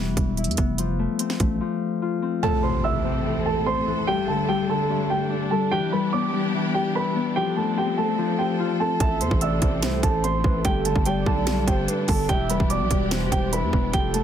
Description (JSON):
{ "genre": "hip hop, trap", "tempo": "146 BPM", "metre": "4/4", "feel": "half-time", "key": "A minor", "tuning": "A4 = 437 Hz", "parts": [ { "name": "Celtic harp", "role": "accompaniment", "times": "0.0-14.2 s", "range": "G2 to F4", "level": "-26 LUFS", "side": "left 6 dB", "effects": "low-pass filter" }, { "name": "growling 808-style bass", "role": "bass", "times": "0.0-1.6, 9.0-14.2 s", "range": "E1 to E2", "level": "-26 LUFS", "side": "right 1 dB", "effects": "none" }, { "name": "trap drum kit", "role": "drums", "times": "0.2-1.5, 9.0-14.2 s", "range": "hi-hat, kick drum, snare drum", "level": "-24 LUFS", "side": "right 1 dB", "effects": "none" }, { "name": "dark baby grand piano", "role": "melody", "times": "2.4-14.2 s", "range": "G4 to E6", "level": "-26 LUFS", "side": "right 2 dB", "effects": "low-pass filter" }, { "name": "dark symphonic string section", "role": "sustained chords", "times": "2.4-14.2 s", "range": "B2 to A4", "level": "-30 LUFS", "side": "right 2 dB", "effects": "none" }, { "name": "impact", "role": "sound effects", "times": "2.4-4.1 s", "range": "none", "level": "-30 LUFS", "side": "right 1 dB", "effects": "none" }, { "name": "gliding portamento lead", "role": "second line", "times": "9.0-14.2 s", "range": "A4 to E5", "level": "-31 LUFS", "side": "right 7 dB", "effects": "chorus, tape echo" } ], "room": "studio ambience", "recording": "dense, heavily limited modern master", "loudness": "-21 LUFS", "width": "side -9 dB against mid", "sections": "0.0-2.4 A section; 2.4-14.2 B section", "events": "break 1.6-2.4; impact 2.4-4.1", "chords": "0.0 Em; 0.8 F; 2.4 Am; 4.1 Gsus2; 5.7 Em7; 7.4 F6; 9.0 Am; 10.6 Gsus2; 12.3 Em7" }